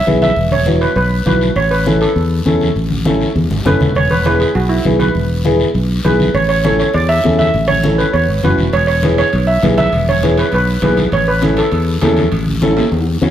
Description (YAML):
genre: latin, cumbia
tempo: 201 BPM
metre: 4/4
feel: straight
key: A major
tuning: A4 = 440 Hz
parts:
  - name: steel pan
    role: melody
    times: 0.0-13.2 s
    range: E4 to E5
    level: -16 LUFS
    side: right 2 dB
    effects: plate reverb
  - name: dark upright piano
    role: accompaniment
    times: 0.1-13.3 s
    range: B3 to A4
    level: -18 LUFS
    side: left 1 dB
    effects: none
  - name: fingered electric bass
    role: bass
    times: 0.1-13.3 s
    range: E1 to E2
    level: -16 LUFS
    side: left 1 dB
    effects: none
  - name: congas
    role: percussion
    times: 0.1-13.3 s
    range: none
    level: -20 LUFS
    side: equal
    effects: none
  - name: guiro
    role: percussion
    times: 0.1-13.3 s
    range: none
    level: -28 LUFS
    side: left 4 dB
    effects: none
  - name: timbales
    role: percussion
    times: 8.7-13.0 s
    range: none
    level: -25 LUFS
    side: right 3 dB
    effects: none
room: wet studio reverb, RT60 0.9 s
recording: heard from further back in the room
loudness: -11 LUFS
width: side -10 dB against mid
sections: 0.0-4.0 A section; 4.0-13.3 B section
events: drum fill 3.4-4.0, 12.6-13.3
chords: 0.0 E; 1.6 A; 4.0 E; 6.3 A; 8.7 E; 11.1 A